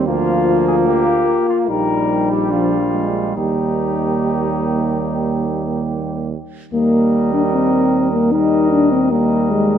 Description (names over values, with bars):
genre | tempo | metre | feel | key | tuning
classical, brass quintet | 69-77 BPM | 4/4 | rubato | Eb major | A4 = 440 Hz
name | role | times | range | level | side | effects
dark trumpet | second line | 0.0-9.8 s | G3 to Bb4 | -24 LUFS | right 6 dB | none
bright trombone | accompaniment | 0.0-9.8 s | F3 to Bb3 | -23 LUFS | right 5 dB | none
mellow French horn | accompaniment | 0.0-9.8 s | Ab3 to F4 | -17 LUFS | left 3 dB | none
clear tuba | bass | 0.0-9.8 s | Bb1 to Eb2 | -23 LUFS | right 5 dB | none
mellow cornet | melody | 0.1-9.8 s | Eb4 to Eb5 | -26 LUFS | left 7 dB | none
room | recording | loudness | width
moderate scoring stage reverb, RT60 1.6 s | none | -14 LUFS | side -9 dB against mid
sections
0.0-6.7 A section; 6.7-9.8 B section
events
none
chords
0.1 Bb/D; 1.7 Eb/Bb; 2.5 Bb; 3.4 Eb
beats
| 0.08 0.86 1.70 2.52 | 3.37 4.22 5.06 5.90 | 6.74 7.53 8.32 9.12